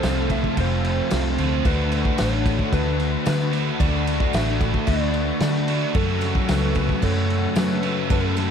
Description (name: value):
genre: rock, shoegaze and dream pop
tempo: 111 BPM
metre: 4/4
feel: straight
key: unclear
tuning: A4 = 443 Hz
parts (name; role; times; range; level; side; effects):
- soft struck synth lead; melody; 0.0-8.5 s; A4 to E5; -30 LUFS; left 1 dB; chorus, slapback echo
- brassy analog pad; sustained chords; 0.0-8.5 s; A3 to E6; -35 LUFS; equal; chorus
- picked twelve-string acoustic guitar; arpeggios; 0.0-8.5 s; F#4 to C#5; -35 LUFS; right 8 dB; analog chorus, slapback echo
- biting overdriven guitar; riff; 0.0-8.5 s; D3 to F#4; -28 LUFS; right 13 dB; reverse reverb
- distorted electric guitar; riff; 0.0-8.5 s; D3 to F#4; -30 LUFS; right 1 dB; overdrive
- thick fuzz guitar; riff; 0.0-8.5 s; F2 to D4; -27 LUFS; left 12 dB; distortion, ensemble chorus
- vintage muted fingered electric bass; bass; 0.0-8.5 s; F1 to F#3; -24 LUFS; equal; none
- loose indie drum kit; drums; 0.0-8.5 s; crash cymbal, kick drum, snare drum; -26 LUFS; equal; none
- tambourine; percussion; 0.0-7.7 s; none; -42 LUFS; left 12 dB; none
room: studio reverb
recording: dark, warm production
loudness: -19 LUFS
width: side -7 dB against mid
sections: 0.0-8.5 A section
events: none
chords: 0.0 Fmaj7; 1.6 D6; 6.0 F#m7